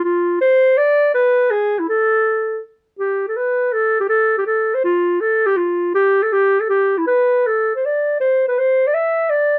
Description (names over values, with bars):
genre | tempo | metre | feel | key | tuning
alpine folk | 163 BPM | 3/4 | rubato | unclear | A4 = 441 Hz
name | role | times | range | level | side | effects
dark clarinet | solo | 0.0-9.6 s | E4 to E5 | -17 LUFS | equal | none
room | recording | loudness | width
light reverb | close, detailed microphones | -17 LUFS | mono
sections
0.0-3.0 A section; 3.0-9.6 B section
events
none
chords
none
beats
0.04 0.41 | 0.77 1.13 1.50 | 1.86 2.23 2.61 | 2.99 3.37 3.73 | 4.10 4.46 4.83 | 5.20 5.56 5.94 | 6.32 6.69 7.07 | 7.45 7.83 8.20 | 8.57 8.94 9.31